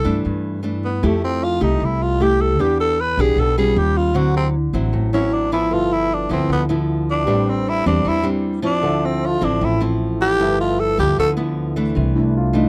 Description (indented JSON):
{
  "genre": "bossa nova",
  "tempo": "154 BPM",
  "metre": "4/4",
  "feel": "straight",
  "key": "C major",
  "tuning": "A4 = 440 Hz",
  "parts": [
    { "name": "growling tenor saxophone", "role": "melody", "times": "0.0-11.3 s", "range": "A3 to B4", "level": "-22 LUFS", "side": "equal", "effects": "none" },
    { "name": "nylon-string guitar", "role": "accompaniment", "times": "0.0-12.7 s", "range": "G2 to G4", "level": "-23 LUFS", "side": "equal", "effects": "none" },
    { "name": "upright bass", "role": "bass", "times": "0.1-12.7 s", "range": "G1 to G2", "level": "-24 LUFS", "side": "equal", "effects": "none" },
    { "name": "warm concert grand piano", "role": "accompaniment", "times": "5.7-12.7 s", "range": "A3 to E5", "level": "-30 LUFS", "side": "equal", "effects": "none" }
  ],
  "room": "light reverb",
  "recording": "dry, close 1970s-style studio recording",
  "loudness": "-19 LUFS",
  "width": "mono",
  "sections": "0.0-12.0 A section",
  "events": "tenor saxophone solo 0.0-12.0",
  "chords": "0.0 C69; 1.0 Fmaj9; 2.6 Em7; 3.8 Eb9; 4.2 D9; 5.7 G13; 7.3 Am11; 8.8 Dm9; 10.4 G13; 12.0 C69",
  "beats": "0.25 0.64 | 1.03 1.42 1.81 2.20 | 2.59 2.98 3.37 3.76 | 4.15 4.54 4.93 5.32 | 5.71 6.10 6.49 6.88 | 7.27 7.66 8.05 8.45 | 8.84 9.22 9.62 10.01 | 10.40 10.79 11.18 11.57 | 11.96 12.35"
}